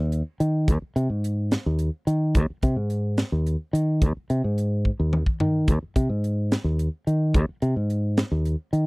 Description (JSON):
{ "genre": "electric jazz fusion", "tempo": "72 BPM (dotted quarters)", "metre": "6/8", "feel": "straight", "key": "unclear", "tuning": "A4 = 440 Hz", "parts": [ { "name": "fingered electric bass", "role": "bass", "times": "0.0-8.9 s", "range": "Eb2 to Eb3", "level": "-22 LUFS", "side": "equal", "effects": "none" }, { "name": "crisp fusion drum kit", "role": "drums", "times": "0.1-8.9 s", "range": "hi-hat, kick drum, snare drum, toms", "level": "-23 LUFS", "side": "equal", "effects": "none" } ], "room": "little or no reverb", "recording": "dry, close 1970s-style studio recording", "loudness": "-22 LUFS", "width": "side -33 dB against mid", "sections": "0.0-8.9 A section", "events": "drum fill 4.8-5.7", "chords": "none", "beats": "| 0.68 1.52 | 2.35 3.18 | 4.02 4.85 | 5.68 6.52 | 7.35 8.18" }